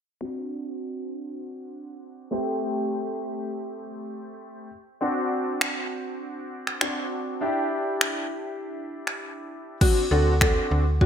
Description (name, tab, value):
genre	dance-pop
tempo	100 BPM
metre	4/4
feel	straight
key	unclear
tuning	A4 = 440 Hz
part	clear concert grand piano	accompaniment	0.2-11.1 s	A3 to G4	-29 LUFS	equal	analog chorus, sidechain pumping, low-pass filter
part	deep house drum kit	drums	5.6-11.1 s	crash cymbal, finger snaps, kick drum	-23 LUFS	equal	gated reverb
part	marimba with hard mallets	melody	9.8-11.1 s	F#4 to A4	-25 LUFS	left 1 dB	none
part	slap-like FM bass	bass	10.1-11.1 s	D2	-22 LUFS	equal	sidechain pumping
room	moderate plate reverb, RT60 1.8 s, digital ambience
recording	bright 1980s-style digital production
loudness	-24 LUFS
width	side -8 dB against mid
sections	0.2-9.8 A section; 9.8-11.1 B section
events	filter sweep on grand piano 0.2-9.8; break 9.2-9.8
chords	0.2 D7; 2.3 Am7; 5.0 D7; 7.4 Em7; 9.8 D7